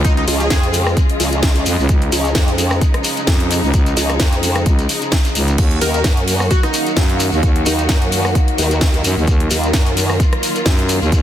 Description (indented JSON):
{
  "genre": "bass house",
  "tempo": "130 BPM",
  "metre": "4/4",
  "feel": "swing 55% on 16ths",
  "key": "Eb minor",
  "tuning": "A4 = 440 Hz",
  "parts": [
    { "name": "plucky unison lead", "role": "melody", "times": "0.0-0.7, 5.8-8.0 s", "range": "Eb4 to Bb4", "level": "-24 LUFS", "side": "equal", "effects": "lush chorus, ping-pong delay" },
    { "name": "rich studio string section", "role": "sustained chords", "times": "0.0-11.2 s", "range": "Db3 to Gb4", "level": "-24 LUFS", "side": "left 1 dB", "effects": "sidechain pumping, low-pass filter" },
    { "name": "growling FM bass", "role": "bass", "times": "0.0-11.2 s", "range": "Db2 to Gb2", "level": "-18 LUFS", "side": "equal", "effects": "tube saturation, sidechain pumping" },
    { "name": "electronic kick drum", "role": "drums", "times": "0.0-11.2 s", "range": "none", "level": "-15 LUFS", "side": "equal", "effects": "none" },
    { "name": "house drum kit", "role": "drums", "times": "0.0-11.2 s", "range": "crash cymbal, hi-hat, rim click, snare drum", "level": "-21 LUFS", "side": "left 1 dB", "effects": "none" },
    { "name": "shekere", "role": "percussion", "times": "0.0-11.2 s", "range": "none", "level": "-27 LUFS", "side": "left 2 dB", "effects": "none" },
    { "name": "ethereal airy pad", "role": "texture", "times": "0.0-11.2 s", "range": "Db4 to F5", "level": "-25 LUFS", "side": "right 1 dB", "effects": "ensemble chorus, built-in reverb, sidechain pumping" },
    { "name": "formant-sweep wobble bass", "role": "bass", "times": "0.3-10.2 s", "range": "Db2 to Gb2", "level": "-18 LUFS", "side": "equal", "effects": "chorus, overdrive, sidechain pumping" }
  ],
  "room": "light reverb, digital ambience",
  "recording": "dense, heavily limited modern master",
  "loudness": "-13 LUFS",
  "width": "side -11 dB against mid",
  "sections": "0.0-11.2 A section",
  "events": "none",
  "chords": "0.0 Db; 5.6 Ebm"
}